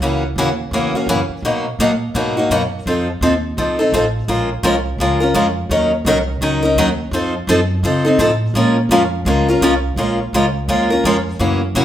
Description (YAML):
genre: acoustic string swing (jazz manouche)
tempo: 169 BPM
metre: 4/4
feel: swing 60% on 8ths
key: Bb minor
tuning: A4 = 440 Hz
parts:
  - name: picked steel-string acoustic guitar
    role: accompaniment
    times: 0.0-11.8 s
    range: B2 to Bb4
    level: -15 LUFS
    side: left 1 dB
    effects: none
  - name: upright bass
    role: bass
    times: 0.0-11.8 s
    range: A1 to Db3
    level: -21 LUFS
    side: right 1 dB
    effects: none
room: moderate large studio reverb, RT60 0.9 s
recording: band playing live in one room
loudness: -14 LUFS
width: side -11 dB against mid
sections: 0.0-10.0 A section; 10.0-11.8 A section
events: none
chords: 0.0 Gb7; 1.4 Bmaj7; 2.9 F7; 4.3 Bbm7; 5.7 Ebm7; 7.1 F7b9b13; 8.5 Bbm7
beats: | 0.02 0.37 0.73 1.08 | 1.44 1.79 2.15 2.50 | 2.86 3.21 3.57 3.93 | 4.28 4.64 4.99 5.35 | 5.70 6.06 6.41 6.77 | 7.12 7.48 7.84 8.19 | 8.55 8.90 9.26 9.62 | 9.97 10.33 10.69 11.04 | 11.40 11.76